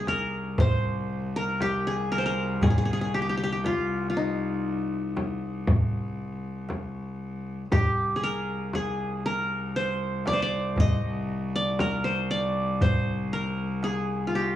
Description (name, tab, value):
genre	Turkish makam ensemble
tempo	118 BPM (eighths)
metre	10/8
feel	straight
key	C makam nihavent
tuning	A4 = 440 Hz
part	qanun	melody	0.0-14.6 s	Eb4 to Eb5	-28 LUFS	equal	cassette tape
part	bright cello	drone	0.0-14.6 s	C2	-31 LUFS	left 1 dB	cassette tape
part	darbuka	percussion	0.1-14.5 s	none	-29 LUFS	right 2 dB	none
part	frame drum	percussion	0.1-13.0 s	none	-26 LUFS	left 1 dB	none
room	studio ambience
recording	home recording on cassette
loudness	-25 LUFS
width	side -12 dB against mid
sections	0.0-14.6 A section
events	none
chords	none